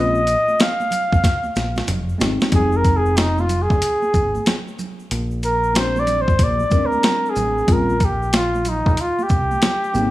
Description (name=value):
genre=hip hop, jazz-hop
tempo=93 BPM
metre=4/4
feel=swing 65% on 16ths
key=unclear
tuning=A4 = 441 Hz
part: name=warm flugelhorn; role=melody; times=0.0-10.1 s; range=Eb4 to F5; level=-20 LUFS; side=equal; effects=none
part: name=mellow tine electric piano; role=accompaniment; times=0.0-10.1 s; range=G3 to Bb4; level=-24 LUFS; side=left 2 dB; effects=medium stereo tremolo
part: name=deep dub fingered electric bass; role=bass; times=0.0-10.1 s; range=F1 to C2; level=-23 LUFS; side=equal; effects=none
part: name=egg shaker and congas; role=percussion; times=0.1-10.1 s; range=none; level=-33 LUFS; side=right 5 dB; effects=none
part: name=boom bap sampler-style drum kit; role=drums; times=0.3-10.1 s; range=hi-hat, kick drum, shaker, snare drum, toms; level=-19 LUFS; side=equal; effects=none
room=light reverb, digital ambience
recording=studio reverb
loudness=-16 LUFS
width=side -16 dB against mid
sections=0.0-2.5 A section; 2.5-10.1 B section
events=drum fill 1.2-2.5; flugelhorn solo 2.5-10.1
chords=0.0 Bbm7; 1.9 Fm7; 5.1 Bb13; 7.7 Bbsus2